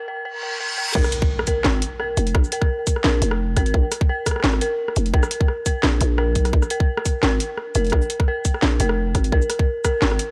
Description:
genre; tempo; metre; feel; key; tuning
half-time drum and bass; 172 BPM; 4/4; swing 55% on 16ths, half-time; unclear; A4 = 440 Hz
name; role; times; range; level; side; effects
dark detuned synth bell; arpeggios; 0.0-10.3 s; Bb4; -28 LUFS; equal; chorus, tape echo
reverse cymbal and impact; sound effects; 0.4-2.3 s; none; -30 LUFS; equal; none
drum and bass drum kit; drums; 0.9-10.3 s; crash cymbal, hi-hat, rim click, shaker, snare drum; -27 LUFS; equal; none
growling 808-style bass; bass; 1.0-10.2 s; F1 to Cb2; -23 LUFS; equal; high-pass filter
electronic kick drum; drums; 1.0-9.9 s; none; -22 LUFS; equal; none
room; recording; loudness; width
light reverb; dry, gritty hardware recording, transformer saturation, cassette tape, high-pass filter; -21 LUFS; mono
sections
1.0-10.3 A section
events
break 0.0-1.0; reverse cymbal 0.4-1.0; drop 1.0-10.3; impact 1.0-2.3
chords
0.0 Bb5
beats
0.25 0.60 | 0.95 1.30 1.65 2.00 | 2.35 2.70 3.04 3.39 | 3.74 4.09 4.44 4.79 | 5.14 5.49 5.83 6.18 | 6.53 6.88 7.23 7.58 | 7.93 8.28 8.63 8.97 | 9.32 9.67 10.02

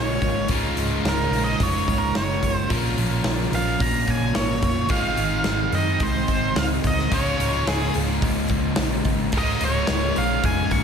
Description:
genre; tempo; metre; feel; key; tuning
quiet-loud alternative rock; 109 BPM; 4/4; straight; Db major; A4 = 444 Hz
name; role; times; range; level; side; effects
octave-fuzz lead guitar; melody; 0.0-10.8 s; Ab4 to Db6; -26 LUFS; right 2 dB; distortion, slapback echo
twelve-string electric guitar; arpeggios; 0.0-7.1 s; Db2 to Bb4; -31 LUFS; right 1 dB; tremolo, slapback echo
distorted electric guitar; riff; 0.0-10.8 s; Db2 to Bb4; -24 LUFS; left 1 dB; distortion, slapback echo
hollow-body short-scale picked electric bass; bass; 0.0-10.8 s; Db1 to Gb2; -27 LUFS; equal; none
big rock drum kit; drums; 0.2-10.8 s; hi-hat, kick drum, snare drum; -26 LUFS; equal; none
room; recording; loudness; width
moderate lush hall reverb, RT60 1.7 s, small room ambience; big arena sound; -20 LUFS; side -7 dB against mid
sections
0.0-10.8 A section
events
lead electric guitar solo 0.0-10.8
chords
0.0 Db6; 2.7 Bbm; 4.9 Ab6; 7.1 Db6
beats
| 0.49 1.05 1.60 2.15 | 2.70 3.25 3.81 4.36 | 4.91 5.46 6.01 6.57 | 7.12 7.67 8.22 8.78 | 9.33 9.88 10.43

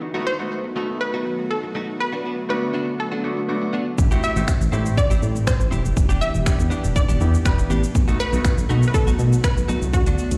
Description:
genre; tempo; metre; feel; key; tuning
dance-pop; 121 BPM; 4/4; straight; unclear; A4 = 435 Hz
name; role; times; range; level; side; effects
bright grand piano; accompaniment; 0.0-9.2 s; A3 to A4; -31 LUFS; equal; sidechain pumping
supersaw pad; sustained chords; 0.0-10.4 s; D3 to G4; -31 LUFS; equal; sidechain pumping
direct-recorded clean electric guitar; riff; 0.0-10.4 s; A3 to G4; -33 LUFS; equal; lush chorus
unison pluck; melody; 0.3-10.4 s; F#4 to E5; -30 LUFS; equal; digital delay
solid FM bass; bass; 4.0-10.4 s; E1 to B2; -23 LUFS; equal; sidechain pumping
pop drum kit; drums; 4.0-10.4 s; finger snaps, hi-hat, kick drum, shaker; -23 LUFS; equal; none
room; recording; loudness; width
light reverb; played on a big sound system in a bare room, large studio reverb; -21 LUFS; mono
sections
0.0-10.4 A section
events
none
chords
0.0 B7; 2.0 D6; 4.0 Am7; 6.0 Em7; 8.0 B7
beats
| 0.02 0.51 1.01 1.50 | 2.00 2.50 2.99 3.49 | 3.98 4.48 4.98 5.47 | 5.97 6.46 6.96 7.46 | 7.95 8.45 8.94 9.44 | 9.94

